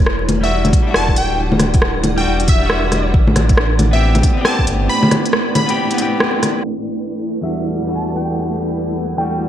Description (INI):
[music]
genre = future garage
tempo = 137 BPM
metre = 4/4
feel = swing 63% on 16ths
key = E minor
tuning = A4 = 440 Hz
[part]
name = granular cloud pad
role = sustained chords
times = 0.0-9.5 s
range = A3 to F#5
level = -24 LUFS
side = right 2 dB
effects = built-in reverb, sidechain pumping
[part]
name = warm sub bass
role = bass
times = 0.0-4.9 s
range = D1 to A1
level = -18 LUFS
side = equal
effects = sidechain pumping
[part]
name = flickering grainy texture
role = texture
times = 0.3-9.5 s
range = A3 to D5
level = -28 LUFS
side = right 1 dB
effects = built-in reverb
[part]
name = organic electronic drum kit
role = drums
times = 0.1-6.5 s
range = bongos, hi-hat, rim click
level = -18 LUFS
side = equal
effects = low-pass filter on hats, low-pass filter on snare, low-pass filter on perc, low-pass filter on room
[part]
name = plucky unison lead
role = melody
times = 0.4-9.4 s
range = E5 to B5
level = -23 LUFS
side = equal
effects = phaser, tape echo
[part]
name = clean electric guitar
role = accompaniment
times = 0.4-9.5 s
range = E2 to G4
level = -22 LUFS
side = left 2 dB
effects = sidechain pumping, low-pass filter, analog delay
[part]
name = electronic kick drum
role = drums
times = 0.7-4.7 s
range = none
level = -14 LUFS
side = equal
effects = none
[sound]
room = light reverb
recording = vinyl crackle, low-pass filter, faint mains hum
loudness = -13 LUFS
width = side -10 dB against mid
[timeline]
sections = 0.0-6.6 A section; 6.6-9.5 B section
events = band accent 6.2; filter sweep on drum 6.6-9.5; filter sweep on clean electric guitar 6.6-9.5; filter sweep 6.6-9.5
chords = 0.0 Em7; 3.1 Am7; 6.6 Em7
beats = 0.07 0.51 0.95 | 1.39 1.82 2.26 2.70 | 3.14 3.58 4.01 4.45 | 4.89 5.33 5.77 6.20 | 6.64 7.08 7.52 7.96 | 8.39 8.83 9.27